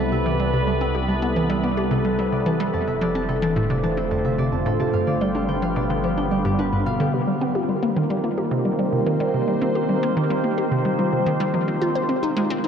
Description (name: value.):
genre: ambient, sequencer-driven space music.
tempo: 109 BPM.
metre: 4/4.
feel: straight.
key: C minor from 7.1 s.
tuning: A4 = 437 Hz.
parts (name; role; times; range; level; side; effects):
evolving wavetable pad; sustained chords; 0.0-12.7 s; C3 to C5; -23 LUFS; right 1 dB; phaser, built-in reverb.
concert harp; arpeggios; 0.0-12.7 s; C4 to A5; -29 LUFS; left 1 dB; auto-pan, low-pass filter, analog delay.
hollow square pluck; riff; 0.0-12.7 s; F2 to C5; -23 LUFS; equal; chorus, analog delay.
round analog bass; bass; 0.0-7.1 s; F1 to C2; -31 LUFS; equal; none.
room: wet huge ambient reverb, RT60 8.4 s.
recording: dark, warm production.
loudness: -19 LUFS.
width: side -7 dB against mid.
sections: 0.0-7.1 A section; 7.1-12.7 B section.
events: filter sweep on harp 0.0-7.1, 7.1-12.7.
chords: 0.0 Cmaj7; 2.7 F6; 4.9 G7; 7.1 Cm7; 11.5 Fm7.